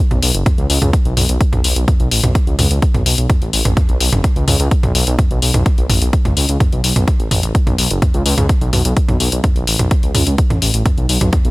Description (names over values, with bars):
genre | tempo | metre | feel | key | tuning
melodic techno | 127 BPM | 4/4 | straight | unclear | A4 = 442 Hz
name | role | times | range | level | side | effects
dark detuned saw bass | bass | 0.1-11.5 s | F#1 to C#2 | -16 LUFS | equal | sidechain pumping
punchy analog drum machine | drums | 0.1-11.5 s | hi-hat, toms | -17 LUFS | equal | sidechain pumping on hats, sidechain pumping on toms
electronic kick drum | drums | 0.5-11.4 s | none | -14 LUFS | equal | none
room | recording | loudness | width
little or no reverb | bright 1980s-style digital production | -12 LUFS | side -21 dB against mid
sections
0.0-11.5 A section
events
none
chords
none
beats
0.46 0.93 1.41 | 1.88 2.35 2.82 3.30 | 3.77 4.24 4.71 5.19 | 5.66 6.13 6.60 7.08 | 7.55 8.02 8.49 8.97 | 9.44 9.91 10.38 10.86 | 11.33